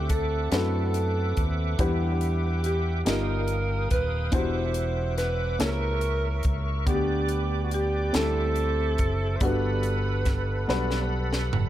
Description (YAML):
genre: slow gospel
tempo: 47 BPM (dotted quarters)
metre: 6/8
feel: straight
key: G major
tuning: A4 = 441 Hz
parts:
  - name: buzzing marimba with medium mallets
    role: melody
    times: 0.0-11.1 s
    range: B3 to C5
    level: -33 LUFS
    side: left 3 dB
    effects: tape echo
  - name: warm alto saxophone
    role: melody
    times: 0.0-11.1 s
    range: F#4 to C5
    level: -32 LUFS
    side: right 3 dB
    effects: tape echo
  - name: warm upright piano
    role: accompaniment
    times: 0.0-11.7 s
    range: G2 to F#5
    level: -32 LUFS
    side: equal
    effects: tape echo
  - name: bright tonewheel organ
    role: sustained chords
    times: 0.0-11.7 s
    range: C4 to D#6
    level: -35 LUFS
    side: right 2 dB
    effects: fast rotary speaker, overdrive, chorus vibrato
  - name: fingered electric bass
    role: bass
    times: 0.0-11.7 s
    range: D#1 to F#2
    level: -27 LUFS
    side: equal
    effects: none
  - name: crisp fusion drum kit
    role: drums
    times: 0.1-11.7 s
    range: hi-hat, kick drum, snare drum, toms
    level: -28 LUFS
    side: equal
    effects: none
room: light reverb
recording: echo-heavy mix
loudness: -23 LUFS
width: side -13 dB against mid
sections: 0.0-11.7 A section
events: drum fill 10.7-11.7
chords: 0.0 D9; 1.8 Em9; 3.1 G7alt; 4.3 Cmaj9#11/E; 5.6 C#dim7; 6.9 G/D; 8.1 D9sus4; 9.4 Gmaj9